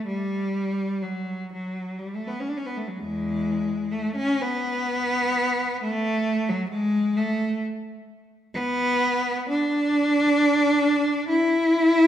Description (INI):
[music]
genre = classical, free, expressive piece for unaccompanied cello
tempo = 40-45 BPM (dotted quarters)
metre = 6/8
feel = rubato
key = unclear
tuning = A4 = 440 Hz
[part]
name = rich cello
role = solo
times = 0.0-12.1 s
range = E2 to E4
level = -22 LUFS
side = equal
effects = none
[sound]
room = wet scoring stage reverb, RT60 2.0 s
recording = none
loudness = -22 LUFS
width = side -10 dB against mid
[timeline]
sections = 0.0-12.1 A section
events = none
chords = none